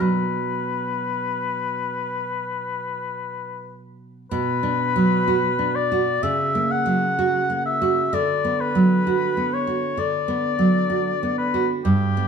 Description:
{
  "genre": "romantic duo for oboe and classical guitar",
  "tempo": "54-65 BPM",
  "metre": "4/4",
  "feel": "rubato",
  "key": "B minor",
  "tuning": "A4 = 439 Hz",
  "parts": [
    { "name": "warm oboe", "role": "melody", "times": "0.0-12.3 s", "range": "G4 to F#5", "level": "-23 LUFS", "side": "left 5 dB", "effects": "none" },
    { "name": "nylon-string guitar", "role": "accompaniment", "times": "0.0-12.3 s", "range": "G2 to F#4", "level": "-22 LUFS", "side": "right 3 dB", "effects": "none" }
  ],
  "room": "wet stone room reverb, RT60 1.2 s",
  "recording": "band playing live in one room",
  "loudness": "-20 LUFS",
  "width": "side -6 dB against mid",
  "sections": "0.0-4.3 A section; 4.3-12.3 B section",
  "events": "none",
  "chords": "0.0 Bm; 6.2 F#/C#; 8.1 Bm/D"
}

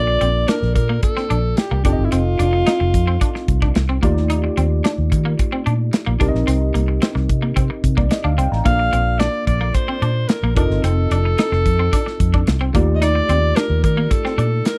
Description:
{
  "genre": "polished 1980s jazz-funk pop",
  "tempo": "110 BPM",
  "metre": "4/4",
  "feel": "straight",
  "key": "Bb major",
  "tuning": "A4 = 442 Hz",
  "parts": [
    { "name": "breathy alto saxophone", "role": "melody", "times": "0.0-4.0, 8.7-14.8 s", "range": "E4 to F5", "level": "-24 LUFS", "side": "equal", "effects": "none" },
    { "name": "tine electric piano", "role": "accompaniment", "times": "0.0-14.8 s", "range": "A3 to Bb5", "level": "-27 LUFS", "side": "equal", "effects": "analog chorus" },
    { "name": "vintage muted fingered electric bass", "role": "bass", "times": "0.0-14.6 s", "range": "F1 to Eb3", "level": "-21 LUFS", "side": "equal", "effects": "none" },
    { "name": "electric guitar at the edge of break-up", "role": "riff", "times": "0.1-14.7 s", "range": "Bb3 to Eb4", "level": "-28 LUFS", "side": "equal", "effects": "analog chorus" },
    { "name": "modern studio drum kit", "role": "drums", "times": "0.2-14.8 s", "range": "hi-hat, kick drum, snare drum", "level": "-22 LUFS", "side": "equal", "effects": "none" }
  ],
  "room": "little or no reverb",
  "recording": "dry, close 1970s-style studio recording",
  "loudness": "-18 LUFS",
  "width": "mono",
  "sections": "0.0-14.8 A section",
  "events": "none",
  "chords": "0.0 Bbmaj7; 1.8 F7; 4.0 Ebmaj9#11; 6.2 Cm7; 8.7 Bbmaj7; 10.6 F7; 12.7 Ebmaj9#11"
}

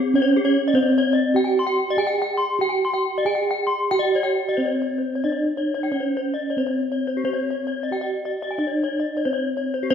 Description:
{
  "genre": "gamelan",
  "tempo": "91 BPM",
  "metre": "4/4",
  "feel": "uneven beats",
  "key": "C pelog",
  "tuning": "A4 = 440 Hz",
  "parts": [
    { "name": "gamelan-type bronze metallophone", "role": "melody", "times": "0.0-9.9 s", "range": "C4 to Ab4-40c", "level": "-22 LUFS", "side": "right 2 dB", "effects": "none" },
    { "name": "gamelan-type bronze metallophone", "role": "arpeggios", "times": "0.2-9.9 s", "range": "G4-45c to C6", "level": "-24 LUFS", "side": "left 4 dB", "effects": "none" }
  ],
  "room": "wet scoring stage reverb, RT60 1.5 s",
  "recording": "none",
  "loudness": "-20 LUFS",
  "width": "side -8 dB against mid",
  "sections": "0.0-4.6 A section; 4.6-9.9 B section",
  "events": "none",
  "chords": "none"
}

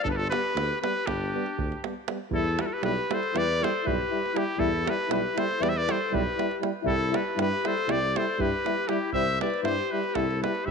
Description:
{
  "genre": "balkan folk, Balkan brass band",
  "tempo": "238 BPM (eighths)",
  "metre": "9/8",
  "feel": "straight",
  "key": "unclear",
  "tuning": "A4 = 440 Hz",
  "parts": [
    { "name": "clear trumpet", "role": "melody", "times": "0.0-10.7 s", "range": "G4 to E5", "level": "-29 LUFS", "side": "right 1 dB", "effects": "none" },
    { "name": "mellow clarinet", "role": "second line", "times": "0.0-10.7 s", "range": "D4 to C5", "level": "-32 LUFS", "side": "left 10 dB", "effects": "none" },
    { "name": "mellow tuba", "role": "bass", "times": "0.0-10.7 s", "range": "G1 to G2", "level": "-32 LUFS", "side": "right 1 dB", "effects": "none" },
    { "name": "davul", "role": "percussion", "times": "0.1-10.7 s", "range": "none", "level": "-35 LUFS", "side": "right 7 dB", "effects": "none" },
    { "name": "warm euphonium", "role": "accompaniment", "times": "0.3-10.7 s", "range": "B3 to E4", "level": "-33 LUFS", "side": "left 12 dB", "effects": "none" },
    { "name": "warm euphonium", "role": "accompaniment", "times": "0.3-10.7 s", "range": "G3", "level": "-33 LUFS", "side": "right 14 dB", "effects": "none" }
  ],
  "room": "moderate plate reverb, RT60 2.3 s",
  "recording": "1960s-style stereo with parts hard left and right",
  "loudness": "-24 LUFS",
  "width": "side -5 dB against mid",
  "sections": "0.0-2.3 A section; 2.3-10.7 A section",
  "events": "none",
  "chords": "0.0 G; 2.3 Em; 6.9 C"
}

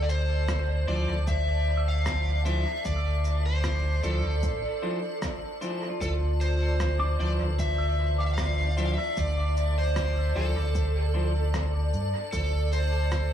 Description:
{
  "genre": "ambient dub",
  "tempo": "76 BPM",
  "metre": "4/4",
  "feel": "swing 54% on 16ths",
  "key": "D minor",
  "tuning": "A4 = 444 Hz",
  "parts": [
    { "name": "overdriven slide guitar", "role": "melody", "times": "0.0-13.3 s", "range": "A4 to F5", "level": "-32 LUFS", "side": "left 1 dB", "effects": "dub echo" },
    { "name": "granular cloud pad", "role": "sustained chords", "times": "0.0-13.3 s", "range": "D5 to A5", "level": "-35 LUFS", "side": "right 1 dB", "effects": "built-in reverb" },
    { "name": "fingered electric bass", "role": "bass", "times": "0.0-13.3 s", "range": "A1 to G2", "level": "-26 LUFS", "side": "equal", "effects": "none" },
    { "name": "electronic cabasa and rim click", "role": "drums", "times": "0.1-13.3 s", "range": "none", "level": "-42 LUFS", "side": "equal", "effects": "small room ambience, dub echo" },
    { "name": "electronic kick drum", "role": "drums", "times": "0.5-13.3 s", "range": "none", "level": "-34 LUFS", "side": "equal", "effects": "small room ambience" },
    { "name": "pedal steel guitar", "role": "arpeggios", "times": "0.6-11.0 s", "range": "E3 to E6", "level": "-38 LUFS", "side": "equal", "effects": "dub echo" },
    { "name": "clean electric guitar", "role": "stabs", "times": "0.9-11.3 s", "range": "F3 to C5", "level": "-37 LUFS", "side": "left 2 dB", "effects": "dub echo" }
  ],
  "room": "light reverb, digital ambience",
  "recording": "echo-heavy mix, small room ambience",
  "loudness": "-24 LUFS",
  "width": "side -10 dB against mid",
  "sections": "0.0-13.3 A section",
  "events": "none",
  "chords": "0.0 Dm9"
}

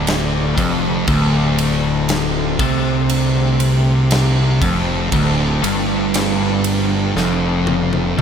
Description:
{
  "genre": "stoner and doom metal",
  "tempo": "59 BPM",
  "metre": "4/4",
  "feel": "straight",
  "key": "D minor",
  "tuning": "A4 = 440 Hz",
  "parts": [
    { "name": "string machine, violas", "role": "sustained chords", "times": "0.0-8.2 s", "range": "D3 to D4", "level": "-28 LUFS", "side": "equal", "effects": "none" },
    { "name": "overdriven electric guitar", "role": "riff", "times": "0.0-8.2 s", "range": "D2 to C3", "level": "-22 LUFS", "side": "equal", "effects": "none" },
    { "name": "thick fuzz guitar", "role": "riff", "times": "0.0-8.2 s", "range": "D2 to C3", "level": "-20 LUFS", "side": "left 6 dB", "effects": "distortion" },
    { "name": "thick fuzz guitar", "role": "riff", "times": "0.0-8.2 s", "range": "D2 to C3", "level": "-20 LUFS", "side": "right 7 dB", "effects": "distortion" },
    { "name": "fuzz fingered electric bass", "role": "bass", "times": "0.0-8.2 s", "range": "D1 to C2", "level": "-23 LUFS", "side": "equal", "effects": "overdrive" },
    { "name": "big rock drum kit", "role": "drums", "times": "0.1-8.2 s", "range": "kick drum, ride cymbal, snare drum, toms", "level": "-22 LUFS", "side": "equal", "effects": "none" }
  ],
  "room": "light reverb",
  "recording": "none",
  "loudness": "-14 LUFS",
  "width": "side -7 dB against mid",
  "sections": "0.0-8.2 A section",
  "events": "drum fill 7.2-8.2",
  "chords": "0.0 Dm"
}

